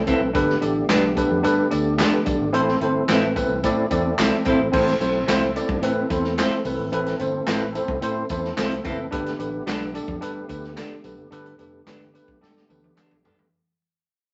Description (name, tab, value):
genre	uptempo 1960s-style soul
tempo	109 BPM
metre	4/4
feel	straight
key	A minor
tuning	A4 = 443 Hz
part	percussive tonewheel organ	sustained chords	0.0-13.5 s	D3 to A4	-34 LUFS	equal	none
part	fingered electric bass	bass	0.0-13.5 s	F1 to A2	-32 LUFS	equal	none
part	tine electric piano	accompaniment	0.1-13.5 s	C4 to D5	-25 LUFS	equal	none
part	electric guitar through a small old amp	stabs	0.1-13.4 s	B3 to A4	-27 LUFS	equal	none
part	swinging big-band drum kit	drums	0.1-13.5 s	crash cymbal, hi-hat, kick drum, snare drum, toms	-30 LUFS	equal	none
part	tambourine and handclaps	percussion	0.1-13.4 s	none	-34 LUFS	equal	none
room	moderate studio reverb, RT60 0.7 s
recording	vinyl crackle, nothing above 7.8 kHz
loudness	-22 LUFS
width	mono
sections	0.0-4.7 A section; 4.7-13.5 B section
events	fade-out 4.7-13.5; drum fill 12.4-13.5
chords	0.3 Gadd9; 2.5 Am; 9.1 Gadd9